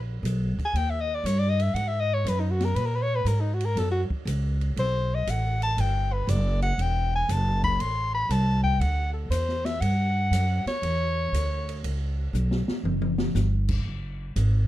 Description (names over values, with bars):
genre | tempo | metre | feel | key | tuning
jazz, small-group swing and bop | 119 BPM | 4/4 | swing 68% on 8ths | unclear | A4 = 440 Hz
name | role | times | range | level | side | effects
upright bass | bass | 0.0-14.7 s | E1 to A#2 | -25 LUFS | equal | none
open jazz drum kit | drums | 0.3-14.5 s | crash cymbal, hi-hat, kick drum, ride cymbal, snare drum, toms | -34 LUFS | equal | none
warm soprano saxophone | melody | 0.7-11.8 s | D#4 to C6 | -28 LUFS | left 2 dB | none
room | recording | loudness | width
light reverb | dark, warm production | -23 LUFS | side -14 dB against mid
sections
0.0-13.9 A section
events
soprano saxophone solo 0.0-13.9; drum fill 12.3-13.3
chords
0.0 D#; 1.8 G#sus2; 3.8 F#5; 4.8 Am69; 5.8 Emadd9; 7.8 Am; 8.8 Dsus2; 9.8 G5; 11.8 Bsus2; 12.8 N.C.